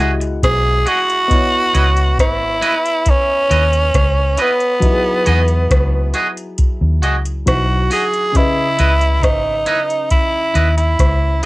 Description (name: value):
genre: lovers rock reggae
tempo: 68 BPM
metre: 4/4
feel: straight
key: unclear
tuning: A4 = 440 Hz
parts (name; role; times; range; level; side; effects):
- dark grand piano; accompaniment; 0.0-11.5 s; C#3 to F#5; -25 LUFS; left 2 dB; none
- twangy electric guitar; stabs; 0.0-11.5 s; E4 to D#5; -18 LUFS; right 2 dB; none
- vintage muted fingered electric bass; bass; 0.0-11.4 s; G#1 to E2; -16 LUFS; equal; none
- soft vintage rhythm box; drums; 0.2-11.5 s; hi-hat, kick drum, rim click; -17 LUFS; equal; overdrive, cassette tape
- raspy tenor saxophone; melody; 0.4-11.4 s; B3 to G#4; -16 LUFS; right 1 dB; tape echo
room: moderate booth ambience, RT60 0.2 s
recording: home recording on cassette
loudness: -13 LUFS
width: side -20 dB against mid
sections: 0.0-11.5 A section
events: none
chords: 0.0 Emaj9; 1.3 C#m9; 4.8 Emaj9; 8.3 C#m9